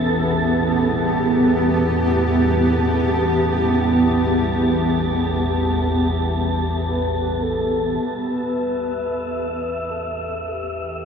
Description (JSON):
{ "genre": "dark ambient drone", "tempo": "free time", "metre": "none", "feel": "none", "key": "unclear", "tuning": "A4 = 440 Hz", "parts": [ { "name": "granular cloud pad", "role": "sustained chords", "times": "0.0-8.1 s", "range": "B3 to E5", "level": "-20 LUFS", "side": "right 1 dB", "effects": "built-in reverb" }, { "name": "organ-like drone", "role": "drone", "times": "0.0-11.1 s", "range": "A1 to E2", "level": "-23 LUFS", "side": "equal", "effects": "ensemble chorus, built-in reverb" }, { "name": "wind-like tuned noise texture", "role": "texture", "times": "0.0-11.1 s", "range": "E5 to A5", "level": "-27 LUFS", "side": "right 1 dB", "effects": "built-in reverb" }, { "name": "mellow horn-like synth lead", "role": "melody", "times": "6.8-11.1 s", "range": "G4 to B4", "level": "-25 LUFS", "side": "left 2 dB", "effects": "wide subtle chorus, ping-pong delay" } ], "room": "wet huge ambient reverb, RT60 7.3 s", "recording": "none", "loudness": "-18 LUFS", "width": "side -6 dB against mid", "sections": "0.0-8.1 A section; 8.1-11.1 B section", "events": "none", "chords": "0.0 Em; 8.1 A5", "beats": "free time" }